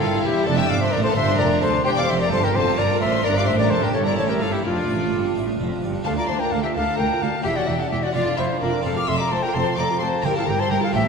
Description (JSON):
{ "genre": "classical, baroque-style concerto movement with solo episodes", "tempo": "86 BPM (dotted quarters)", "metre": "6/8", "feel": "straight", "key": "D minor", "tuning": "A4 = 440 Hz", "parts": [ { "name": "concert flute", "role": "melody", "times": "0.0-11.1 s", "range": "F4 to D6", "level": "-24 LUFS", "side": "left 2 dB", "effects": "none" }, { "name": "rich chamber violin section", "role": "melody", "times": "0.0-11.0 s", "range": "D5 to F6", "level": "-29 LUFS", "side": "left 5 dB", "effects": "none" }, { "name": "rich chamber violin section", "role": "second line", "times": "0.0-11.0 s", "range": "D4 to F5", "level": "-26 LUFS", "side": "left 3 dB", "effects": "none" }, { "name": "harpsichord", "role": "accompaniment", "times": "0.0-11.1 s", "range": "D2 to G5", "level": "-30 LUFS", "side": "right 2 dB", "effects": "none" }, { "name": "rich chamber viola section", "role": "accompaniment", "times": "0.0-11.1 s", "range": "A3 to A4", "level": "-28 LUFS", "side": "right 2 dB", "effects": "none" }, { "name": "rich studio cello section", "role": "bass", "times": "0.0-11.0 s", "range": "D2 to A2", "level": "-27 LUFS", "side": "right 4 dB", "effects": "none" }, { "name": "warm studio double bass section", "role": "bass", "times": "0.0-11.0 s", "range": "E1 to D2", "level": "-26 LUFS", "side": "right 3 dB", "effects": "none" } ], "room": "wet concert hall reverb, RT60 2.0 s", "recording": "heard from further back in the room", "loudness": "-18 LUFS", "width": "side -5 dB against mid", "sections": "0.0-6.1 A section; 6.1-11.1 A section", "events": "none", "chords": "0.5 Dm/F; 1.2 Gm; 1.9 C/E; 2.5 F; 3.2 G5; 3.9 A7/G; 4.6 Dm/F; 6.1 Dm; 7.5 C#dim/E; 8.1 Dm/F; 8.8 F; 10.2 Edim/G", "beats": "| 0.47 1.16 | 1.85 2.55 | 3.25 3.94 | 4.65 5.35 | 6.06 6.75 | 7.45 8.15 | 8.85 9.54 | 10.24 10.93" }